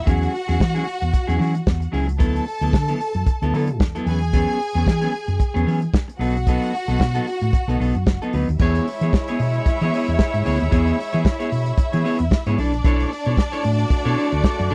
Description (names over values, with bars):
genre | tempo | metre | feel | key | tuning
disco | 113 BPM | 4/4 | swing 56% on 16ths | E major, E mixolydian from 8.6 s | A4 = 438 Hz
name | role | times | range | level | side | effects
clear studio string section | second line | 0.0-14.7 s | D4 to A5 | -30 LUFS | equal | none
clean electric guitar | accompaniment | 0.1-14.7 s | F#3 to D5 | -26 LUFS | equal | none
hollow-body short-scale fingered electric bass | bass | 0.1-14.7 s | F#1 to E3 | -24 LUFS | equal | none
warm soul drum kit | drums | 0.1-14.7 s | crash cymbal, hi-hat, kick drum, snare drum | -21 LUFS | equal | none
mellow horn section | stabs | 8.6-14.7 s | G#3 to D5 | -31 LUFS | equal | none
room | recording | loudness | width
little or no reverb | dry, close 1970s-style studio recording, lossy compression artefacts | -20 LUFS | mono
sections
0.0-8.6 A section; 8.6-14.7 B section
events
none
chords
0.1 E69; 2.2 D69; 4.1 E69; 6.2 B7; 8.6 E6; 12.6 Bm11